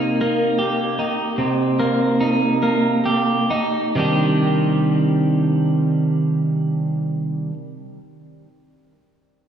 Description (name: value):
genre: rock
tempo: 43-53 BPM (dotted quarters)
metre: 6/8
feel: straight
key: C minor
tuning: A4 = 440 Hz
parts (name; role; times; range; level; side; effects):
- twelve-string electric guitar; arpeggios; 0.0-7.5 s; C3 to G4; -17 LUFS; right 1 dB; analog delay
room: wet lush hall reverb, RT60 1.9 s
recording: dreamy mix soaked in reverb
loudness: -17 LUFS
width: side -8 dB against mid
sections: 0.0-4.0 A section; 4.0-6.8 B section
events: slowing down 0.0-4.0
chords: 0.0 Eb/C; 4.0 Cmadd9